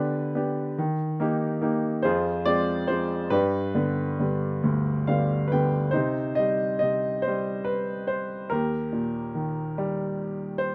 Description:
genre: classical, lyrical solo piano.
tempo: 47 BPM (dotted quarters).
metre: 6/8.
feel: rubato.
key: C harmonic minor.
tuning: A4 = 439 Hz.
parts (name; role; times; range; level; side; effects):
clear baby grand piano; solo; 0.0-10.7 s; D2 to G5; -26 LUFS; equal; none.
room: light reverb.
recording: close, detailed microphones.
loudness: -26 LUFS.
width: mono.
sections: 0.0-5.9 A section; 5.9-10.7 B section.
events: grand piano fill 4.6-5.9.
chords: 0.0 G/D; 0.8 Eb; 2.0 Fm; 3.3 G; 5.9 Cm; 8.5 Eb.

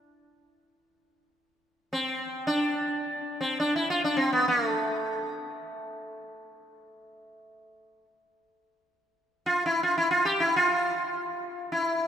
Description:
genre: caucasian folk.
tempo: free time.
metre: none.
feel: none.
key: D dorian.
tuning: A4 = 440 Hz.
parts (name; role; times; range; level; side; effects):
sitar; solo; 0.0-12.1 s; A3 to G4; -25 LUFS; equal; none.
room: wet church reverb, RT60 3.2 s.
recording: minimal, uncompressed stereo recording.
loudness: -24 LUFS.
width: side -8 dB against mid.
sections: 0.0-12.1 A section.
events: none.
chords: none.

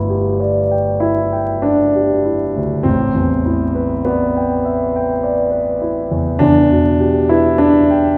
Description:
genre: classical, impressionist solo piano.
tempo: 48-53 BPM.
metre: 3/4.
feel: rubato.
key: unclear.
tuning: A4 = 440 Hz.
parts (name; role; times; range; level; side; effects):
warm concert grand piano; solo; 0.0-8.2 s; G1 to G5; -15 LUFS; equal; none.
room: wet scoring stage reverb, RT60 1.8 s.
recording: heard from further back in the room, vinyl crackle.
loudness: -15 LUFS.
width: mono.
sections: 0.0-8.2 A section.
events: none.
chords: 0.0 G6; 2.8 Am11; 6.4 Em.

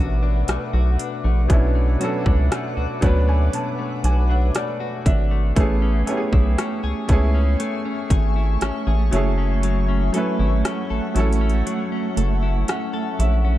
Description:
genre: contemporary R&B.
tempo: 59 BPM.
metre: 4/4.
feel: straight.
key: B dorian.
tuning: A4 = 440 Hz.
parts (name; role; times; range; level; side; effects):
felt-muted upright piano; accompaniment; 0.0-13.6 s; F#3 to A5; -26 LUFS; right 2 dB; none.
granular cloud pad; sustained chords; 0.0-13.6 s; A3 to D6; -30 LUFS; right 1 dB; built-in reverb.
direct-recorded clean electric guitar; arpeggios; 0.0-13.6 s; B2 to A4; -29 LUFS; left 6 dB; wide subtle chorus, digital delay.
rubbery square bass; bass; 0.0-13.6 s; F#1 to D2; -19 LUFS; equal; none.
trap drum kit; drums; 0.5-13.4 s; hi-hat, kick drum, rim click; -20 LUFS; equal; overdrive.
room: little or no reverb.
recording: dark, warm production.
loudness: -18 LUFS.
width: side -14 dB against mid.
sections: 0.0-13.6 A section.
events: felt piano fill 2.5-5.6, 12.2-13.6; kick muted 9.6-13.6.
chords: 0.0 Bm7; 5.6 Amaj7; 9.1 F#m7.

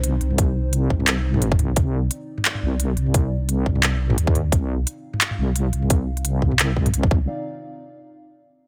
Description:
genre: half-time drum and bass.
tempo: 174 BPM.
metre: 4/4.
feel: swing 55% on 16ths, half-time.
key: C minor.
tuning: A4 = 440 Hz.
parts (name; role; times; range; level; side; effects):
dark analog pad; sustained chords; 0.0-7.3 s; C4 to F5; -38 LUFS; equal; chorus, sidechain pumping.
deep soft wobble bass; bass; 0.0-7.3 s; C2 to Eb2; -23 LUFS; equal; chorus.
organic electronic drum kit; drums; 0.0-7.0 s; handclaps, hi-hat, toms; -25 LUFS; equal; none.
electronic kick drum; drums; 0.4-7.2 s; none; -22 LUFS; equal; none.
room: little or no reverb.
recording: none.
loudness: -21 LUFS.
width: mono.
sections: 0.0-7.3 A section; 7.3-8.7 B section.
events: filter sweep on analog synth pad 0.0-7.3.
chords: 0.0 Cmadd9; 7.3 N.C..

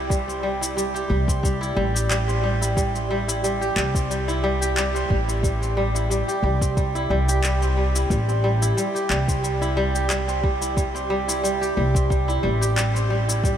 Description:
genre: organic downtempo.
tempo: 90 BPM.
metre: 4/4.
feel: swing 54% on 16ths.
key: A minor pentatonic.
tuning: A4 = 442 Hz.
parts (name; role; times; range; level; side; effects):
kora; arpeggios; 0.0-13.6 s; G3 to G4; -23 LUFS; right 1 dB; diffuse ambient delay.
upright bass; bass; 0.0-13.6 s; A1 to C2; -24 LUFS; equal; none.
electronic kick drum; drums; 0.1-13.6 s; none; -23 LUFS; equal; none.
electronic shaker and handclaps; drums; 0.1-13.6 s; none; -30 LUFS; left 2 dB; overdrive.
room: moderate huge ambient reverb, RT60 8.3 s.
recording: dreamy mix soaked in reverb.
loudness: -20 LUFS.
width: side -9 dB against mid.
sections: 0.0-13.6 A section.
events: none.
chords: 0.0 Am7.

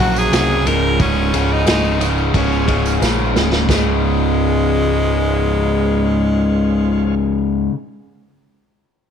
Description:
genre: classic rock.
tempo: 89 BPM.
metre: 4/4.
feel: straight.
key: Db major.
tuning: A4 = 440 Hz.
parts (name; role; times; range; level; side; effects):
raspy tenor saxophone; melody; 0.0-7.1 s; Ab3 to Bb4; -21 LUFS; right 1 dB; slapback echo.
picked swing-style acoustic guitar; accompaniment; 0.0-7.8 s; Db3 to Gb4; -35 LUFS; right 12 dB; none.
warm upright piano; accompaniment; 0.0-7.7 s; Ab3 to Bb4; -30 LUFS; left 12 dB; none.
bright tonewheel organ; sustained chords; 0.0-7.1 s; F3 to Gb4; -31 LUFS; equal; none.
biting overdriven guitar; riff; 0.0-7.7 s; Db2 to Gb3; -20 LUFS; left 12 dB; none.
overdriven semi-hollow guitar; riff; 0.0-7.7 s; Db2 to Gb3; -21 LUFS; right 10 dB; none.
growling picked electric bass; bass; 0.0-7.7 s; Db1 to C2; -20 LUFS; right 1 dB; overdrive.
tambourine; percussion; 0.2-4.0 s; none; -33 LUFS; right 14 dB; none.
vintage drum kit; drums; 0.3-3.8 s; china cymbal, kick drum, ride cymbal, snare drum; -20 LUFS; equal; none.
room: small room ambience.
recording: 1960s-style stereo with parts hard left and right.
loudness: -14 LUFS.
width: side -8 dB against mid.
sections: 0.0-3.7 A section; 3.7-6.4 B section.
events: drum fill 3.0-3.7.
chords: 0.0 Gb/Bb; 0.7 Db.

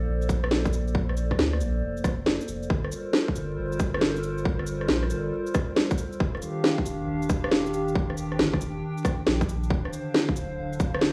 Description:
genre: future garage.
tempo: 137 BPM.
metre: 4/4.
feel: swing 66% on 16ths.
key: G minor.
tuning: A4 = 442 Hz.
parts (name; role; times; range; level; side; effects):
warbly tape-like pad; sustained chords; 0.0-11.1 s; D3 to G5; -33 LUFS; equal; chorus, built-in reverb, sidechain pumping.
soft dub sub bass; bass; 0.0-11.1 s; D1 to D2; -33 LUFS; equal; sidechain pumping.
electronic shaker, rim click and snare drum; drums; 0.2-11.1 s; none; -28 LUFS; equal; overdrive.
electronic kick drum; drums; 0.3-10.9 s; none; -28 LUFS; equal; overdrive.
room: light reverb.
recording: dry, gritty hardware recording, vinyl crackle, studio reverb.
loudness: -26 LUFS.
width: mono.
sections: 0.0-2.7 A section; 2.7-11.1 B section.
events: kick drops out 2.3-2.7.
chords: 0.0 Bbmaj9; 2.7 Gm11; 6.2 Ebmaj9; 9.7 Dm7.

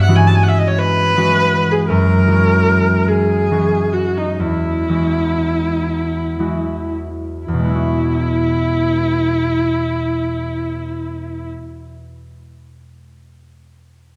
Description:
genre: classical, impressionist duo for viola and harp.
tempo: 35-56 BPM (dotted quarters).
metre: 6/8.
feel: rubato.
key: E major.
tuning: A4 = 440 Hz.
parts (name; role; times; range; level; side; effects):
rich viola; melody; 0.0-11.5 s; D#4 to A5; -21 LUFS; equal; none.
concert harp; accompaniment; 0.0-11.8 s; E2 to F#4; -19 LUFS; equal; none.
room: wet concert hall reverb, RT60 2.4 s.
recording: none.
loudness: -17 LUFS.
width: mono.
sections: 0.0-7.5 A section; 7.5-10.7 B section.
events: slowing down 0.8-7.5.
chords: 0.0 E69/G; 1.9 F#9; 4.4 Eadd9.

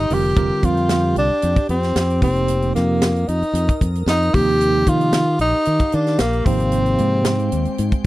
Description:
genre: electric jazz fusion.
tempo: 113 BPM.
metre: 4/4.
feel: straight.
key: F dorian.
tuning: A4 = 440 Hz.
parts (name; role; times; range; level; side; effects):
breathy tenor saxophone; melody; 0.0-8.1 s; Bb3 to G4; -20 LUFS; equal; none.
icy glass pad; sustained chords; 0.0-8.1 s; Ab3 to Eb6; -31 LUFS; equal; chorus, built-in reverb.
modern bright fingered electric bass; bass; 0.0-7.9 s; F1 to Eb3; -20 LUFS; equal; none.
bell-like tine electric piano; accompaniment; 0.1-7.3 s; C3 to Bb4; -22 LUFS; right 2 dB; medium stereo tremolo.
tight funk drum kit; drums; 0.1-8.0 s; hi-hat, kick drum, snare drum; -20 LUFS; equal; none.
room: little or no reverb.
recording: dry, close 1970s-style studio recording.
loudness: -15 LUFS.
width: side -17 dB against mid.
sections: 0.0-8.1 A section.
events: none.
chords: 0.4 Fsus2; 2.2 Bbsus4/F; 4.3 Ebmaj9; 6.5 Abmaj7.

